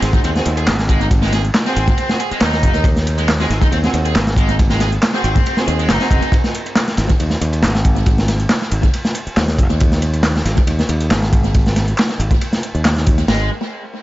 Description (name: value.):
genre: breakbeat, breaks.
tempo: 138 BPM.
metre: 4/4.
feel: straight.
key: unclear.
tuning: A4 = 440 Hz.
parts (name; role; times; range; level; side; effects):
bright studio string section; stabs; 0.0-6.2 s; B#3 to G#4; -25 LUFS; right 2 dB; vintage 12-bit sampler grit, tape echo.
modern bright fingered electric bass; bass; 0.0-13.5 s; F#1 to D#2; -18 LUFS; equal; tube saturation.
crunchy breakbeat drum kit; drums; 0.0-13.4 s; crash cymbal, kick drum, ride cymbal, snare drum; -16 LUFS; equal; tape echo.
punchy analog drum machine; drums; 0.0-13.3 s; handclaps, hi-hat; -26 LUFS; equal; overdrive.
distorted electric guitar; riff; 0.1-6.3, 13.3-13.5 s; G#3 to G#4; -23 LUFS; equal; overdrive, vintage 12-bit sampler grit, tape echo.
room: small room ambience.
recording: echo-heavy mix, nothing above 7.6 kHz.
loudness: -13 LUFS.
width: side -16 dB against mid.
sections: 0.0-13.3 A section.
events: none.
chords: 0.0 G#; 13.3 N.C..